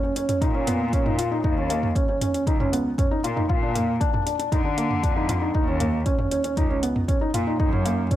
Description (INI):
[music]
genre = piano and strings electronica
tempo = 117 BPM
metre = 4/4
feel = straight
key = Eb minor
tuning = A4 = 439 Hz
[part]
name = felt-muted upright piano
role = riff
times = 0.0-8.2 s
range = Bb3 to F4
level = -25 LUFS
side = equal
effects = tape echo
[part]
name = deep house drum kit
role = drums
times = 0.2-8.2 s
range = hi-hat, toms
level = -30 LUFS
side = right 1 dB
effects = none
[part]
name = clear studio cello section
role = bass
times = 0.4-8.0 s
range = Db2 to D3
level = -28 LUFS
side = left 1 dB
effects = sidechain pumping
[part]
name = electronic kick drum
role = drums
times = 0.4-8.2 s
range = none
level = -24 LUFS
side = equal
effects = none
[sound]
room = light reverb, small room ambience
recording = none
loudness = -21 LUFS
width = side -13 dB against mid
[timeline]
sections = 0.0-8.2 A section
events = none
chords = 0.0 Gb (rootless); 1.4 Eb5; 3.5 Bb; 5.5 Eb5; 7.6 Gb